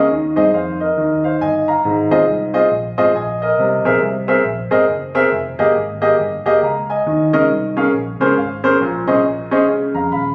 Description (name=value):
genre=uptempo gospel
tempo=138 BPM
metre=4/4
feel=swing 61% on 8ths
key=Ab major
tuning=A4 = 440 Hz
part: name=clear baby grand piano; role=accompaniment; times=0.0-10.3 s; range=Ab2 to Cb6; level=-16 LUFS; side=equal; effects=none
part: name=vintage muted fingered electric bass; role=bass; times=0.0-10.3 s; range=Eb1 to G2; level=-29 LUFS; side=equal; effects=none
room=moderate lush hall reverb, RT60 2.1 s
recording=recorded on a phone in the room, studio reverb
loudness=-16 LUFS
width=mono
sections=0.0-10.3 A section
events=grand piano fill 1.0-1.8, 7.9-8.8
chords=0.1 Ab/Eb; 1.0 Abmaj13; 1.8 Ab6; 3.6 C7alt; 5.3 Fm11; 7.1 Eb7sus4; 8.8 Bbm11; 9.7 Db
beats=| 0.10 0.54 0.97 1.41 | 1.84 2.28 2.71 3.15 | 3.58 4.02 4.45 4.89 | 5.32 5.76 6.19 6.63 | 7.06 7.50 7.93 8.37 | 8.80 9.24 9.67 10.11